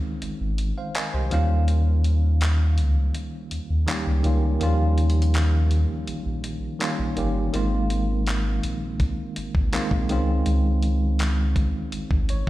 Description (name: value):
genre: contemporary R&B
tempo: 82 BPM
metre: 4/4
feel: straight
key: unclear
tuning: A4 = 440 Hz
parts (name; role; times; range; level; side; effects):
- bell-like tine electric piano; accompaniment; 0.0-12.5 s; Eb3 to Ab5; -27 LUFS; right 1 dB; fast stereo tremolo
- warm sub bass; bass; 0.2-12.4 s; G1 to Eb2; -22 LUFS; equal; none
- dusty soul sampler-style drum kit; drums; 0.2-12.5 s; handclaps, hi-hat, kick drum; -28 LUFS; equal; none
room: digital ambience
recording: played on a big sound system in a bare room, stone room reverb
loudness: -21 LUFS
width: side -16 dB against mid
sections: 0.0-12.5 A section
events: break 0.0-7.5; tine electric piano fill 0.6-1.7, 11.9-12.5; kick muted 7.5-9.0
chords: 0.0 Dbmaj9; 1.3 Eb9; 7.5 Ab69; 10.1 Dbmaj9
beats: 0.22 0.95 | 1.68 2.41 3.14 3.88 | 4.61 5.34 6.07 6.80 | 7.53 8.27 9.00 9.73 | 10.46 11.19 11.92